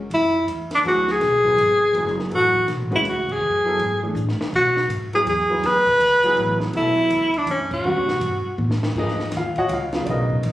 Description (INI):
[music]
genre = modal jazz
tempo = 163 BPM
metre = 3/4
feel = swing 63% on 8ths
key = B dorian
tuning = A4 = 439 Hz
[part]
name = upright bass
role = bass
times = 0.0-10.5 s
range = F#1 to B2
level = -28 LUFS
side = equal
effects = none
[part]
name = warm tenor saxophone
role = melody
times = 0.1-8.6 s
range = C#4 to B4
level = -18 LUFS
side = equal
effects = plate reverb
[part]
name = compact cocktail drum kit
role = drums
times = 0.1-10.5 s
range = crash cymbal, hi-hat, kick drum, ride cymbal, snare drum, toms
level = -32 LUFS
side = left 1 dB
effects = none
[part]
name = warm baby grand piano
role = accompaniment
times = 0.8-10.5 s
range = C#3 to F#5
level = -26 LUFS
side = equal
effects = none
[sound]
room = moderate club reverb, RT60 0.6 s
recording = recorded on a phone in the room, club reverb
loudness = -18 LUFS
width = side -14 dB against mid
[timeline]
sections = 0.1-9.0 A section; 9.0-10.5 B section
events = band accent 3.2, 7.7; drum fill 4.2-4.5, 8.6-9.0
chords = 0.1 Bm6; 2.3 F#madd9; 4.5 Bm69; 6.7 F#m/B; 7.8 D#7#9b13 (rootless); 9.0 G#m11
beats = | 0.11 0.48 0.85 | 1.21 1.58 1.95 | 2.32 2.68 3.05 | 3.42 3.79 4.16 | 4.53 4.89 5.26 | 5.63 6.00 6.37 | 6.74 7.11 7.48 | 7.85 8.22 8.59 | 8.96 9.33 9.70 | 10.07 10.44